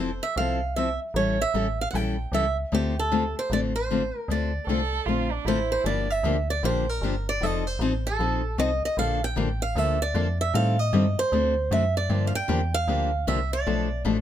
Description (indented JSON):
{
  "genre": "acoustic string swing (jazz manouche)",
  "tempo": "154 BPM",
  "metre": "4/4",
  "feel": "swing 63% on 8ths",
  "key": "D minor",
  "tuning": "A4 = 439 Hz",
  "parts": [
    { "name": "picked swing-style acoustic guitar", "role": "melody", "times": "0.0-14.0 s", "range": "G4 to G5", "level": "-27 LUFS", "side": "right 3 dB", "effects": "none" },
    { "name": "picked steel-string acoustic guitar", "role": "accompaniment", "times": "0.0-14.2 s", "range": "B2 to A4", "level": "-27 LUFS", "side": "left 5 dB", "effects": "none" },
    { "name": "metallic FM bass", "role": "bass", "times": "0.0-14.2 s", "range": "F1 to A2", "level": "-27 LUFS", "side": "equal", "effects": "none" },
    { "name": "rich violin", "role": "second line", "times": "4.7-5.8 s", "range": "D4 to A4", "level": "-31 LUFS", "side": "right 8 dB", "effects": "none" }
  ],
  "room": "light reverb",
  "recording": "none",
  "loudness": "-23 LUFS",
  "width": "side -10 dB against mid",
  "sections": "0.0-5.8 A section; 5.8-14.2 B section",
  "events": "none",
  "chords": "0.0 Fmaj7; 1.1 A7; 2.7 Dm7; 5.8 Gm7; 7.4 F7; 9.0 Bbmaj7; 10.5 Am7b5; 11.3 D7; 12.1 Gm7; 13.7 Bm7b5",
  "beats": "0.37 0.76 | 1.15 1.54 1.93 2.33 | 2.72 3.11 3.50 3.89 | 4.28 4.67 5.07 5.46 | 5.85 6.24 6.63 7.02 | 7.41 7.80 8.19 8.58 | 8.97 9.36 9.75 10.14 | 10.54 10.93 11.32 11.71 | 12.10 12.49 12.88 13.27 | 13.66 14.05"
}